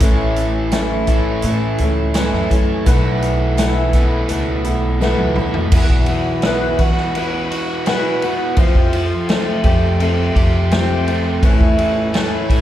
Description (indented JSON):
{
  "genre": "folk rock and heartland rock",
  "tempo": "84 BPM",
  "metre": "4/4",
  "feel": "straight",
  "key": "unclear",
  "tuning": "A4 = 438 Hz",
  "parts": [
    { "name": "picked old ladder-braced acoustic guitar", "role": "accompaniment", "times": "0.0-12.6 s", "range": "E2 to G4", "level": "-20 LUFS", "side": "left 2 dB", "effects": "none" },
    { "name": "bright tonewheel organ", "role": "sustained chords", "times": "0.0-12.6 s", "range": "E4 to C#6", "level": "-32 LUFS", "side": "right 1 dB", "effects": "slow rotary speaker" },
    { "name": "crunchy overdriven guitar", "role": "riff", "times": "0.0-12.6 s", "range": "E2 to G4", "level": "-22 LUFS", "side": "right 3 dB", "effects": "spring reverb" },
    { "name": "upright bass", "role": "bass", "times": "0.0-12.6 s", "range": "A1 to E3", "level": "-20 LUFS", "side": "equal", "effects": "none" },
    { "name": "vintage drum kit", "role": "drums", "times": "0.0-12.6 s", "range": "crash cymbal, hi-hat, kick drum, ride cymbal, snare drum, toms", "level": "-17 LUFS", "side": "equal", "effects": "none" }
  ],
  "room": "moderate concert hall reverb, RT60 2.0 s",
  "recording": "recorded in a church or concert hall",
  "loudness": "-14 LUFS",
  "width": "side -12 dB against mid",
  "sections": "0.0-5.7 A section; 5.7-12.6 B section",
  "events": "drum fill 5.0-5.7",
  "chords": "0.0 A; 2.9 Esus4/B; 5.7 Esus2; 8.6 Fadd9; 11.4 A"
}